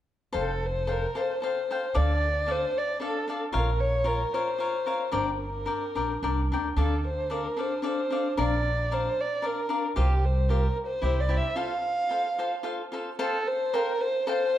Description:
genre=mexican folk, mariachi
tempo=112 BPM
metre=3/4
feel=rubato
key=F major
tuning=A4 = 440 Hz
part: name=cavaquinho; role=accompaniment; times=0.3-14.5 s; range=D4 to G5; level=-30 LUFS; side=left 3 dB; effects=none
part: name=upright bass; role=bass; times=0.3-11.4 s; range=F1 to D2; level=-27 LUFS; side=right 1 dB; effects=none
part: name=dark violin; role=melody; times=0.4-14.6 s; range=G4 to F5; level=-28 LUFS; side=equal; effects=none
room=moderate recital hall reverb, RT60 1.6 s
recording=dark, warm production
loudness=-25 LUFS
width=side -12 dB against mid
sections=0.3-13.2 A section; 13.2-14.6 A section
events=break 11.6-13.2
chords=0.3 Fadd9; 1.9 Dm; 3.5 Bbm; 5.1 Gm; 6.8 Dm; 8.4 Bb; 10.0 Csus4; 11.0 C; 11.6 F; 13.2 Fadd9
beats=| 0.34 0.88 1.42 | 1.95 2.48 3.00 | 3.53 4.05 4.59 | 5.12 5.67 6.21 | 6.76 7.30 7.83 | 8.37 8.91 9.44 | 9.96 10.49 11.03 | 11.56 12.09 12.64 | 13.20 13.74 14.28

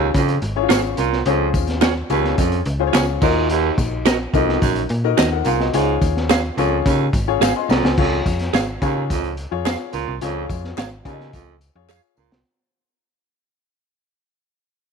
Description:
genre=uptempo 1960s-style soul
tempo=107 BPM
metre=4/4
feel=straight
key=Db major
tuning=A4 = 442 Hz
part: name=warm grand piano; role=accompaniment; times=0.0-12.2 s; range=Db4 to C6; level=-23 LUFS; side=left 15 dB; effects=none
part: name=warm baritone saxophone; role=riff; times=0.0-12.4 s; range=Eb2 to Bb2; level=-23 LUFS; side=right 14 dB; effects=none
part: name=slap-like FM bass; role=bass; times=0.0-12.4 s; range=Ab1 to Db3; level=-23 LUFS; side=equal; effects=transformer saturation
part: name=crunchy breakbeat drum kit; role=drums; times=0.1-12.4 s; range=crash cymbal, hi-hat, kick drum, snare drum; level=-21 LUFS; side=equal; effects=none
part: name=tambourine and handclaps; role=percussion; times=0.2-12.3 s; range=none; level=-32 LUFS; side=left 15 dB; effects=none
part: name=semi-hollow electric guitar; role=stabs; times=0.7-12.0 s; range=F4 to F5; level=-21 LUFS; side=right 14 dB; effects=analog chorus
room=little or no reverb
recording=1960s-style stereo with parts hard left and right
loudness=-16 LUFS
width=side -6 dB against mid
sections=0.0-8.0 A section; 8.0-12.5 B section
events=drum fill 7.4-8.0, 11.9-12.5; fade-out 8.0-12.5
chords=0.0 Db; 3.2 Ebm; 5.7 Db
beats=0.15 0.71 | 1.27 1.82 2.38 2.94 | 3.50 4.06 4.62 5.18 | 5.74 6.30 6.86 7.42 | 7.98 8.54 9.10 9.66 | 10.22 10.78 11.34 11.90

